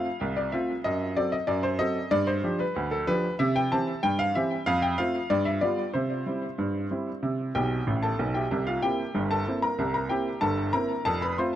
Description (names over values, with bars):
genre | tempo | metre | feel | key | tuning
ragtime piano | 94 BPM | 2/4 | straight | C major | A4 = 444 Hz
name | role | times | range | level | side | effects
bright baby grand piano | solo | 0.0-11.6 s | F1 to C6 | -25 LUFS | equal | tape echo
room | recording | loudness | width
light reverb | dry, close 1970s-style studio recording | -25 LUFS | side -11 dB against mid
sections
0.0-8.5 A section; 8.5-11.6 B section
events
grand piano fill 7.6-8.5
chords
0.0 F; 0.9 F#dim; 2.1 G5; 3.4 C; 4.7 F; 5.3 G7; 5.9 C; 8.5 C7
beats
0.22 | 0.85 1.49 | 2.12 2.76 | 3.39 4.03 | 4.66 5.30 | 5.94 6.59 | 7.23 7.87 | 8.52 9.15 | 9.79 10.43 | 11.07